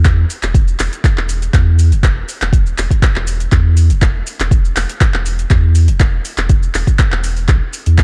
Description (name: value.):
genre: afro house.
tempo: 121 BPM.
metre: 4/4.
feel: straight.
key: unclear.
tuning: A4 = 440 Hz.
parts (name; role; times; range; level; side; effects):
warm sub bass; bass; 0.0-8.0 s; E1 to E2; -16 LUFS; equal; sidechain pumping.
deep house drum kit; drums; 0.1-8.0 s; handclaps, hi-hat, shaker; -23 LUFS; equal; none.
electronic kick drum; drums; 0.1-8.0 s; none; -14 LUFS; equal; none.
room: little or no reverb.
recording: dark, warm production.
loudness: -14 LUFS.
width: mono.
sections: 0.0-8.0 A section.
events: none.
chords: none.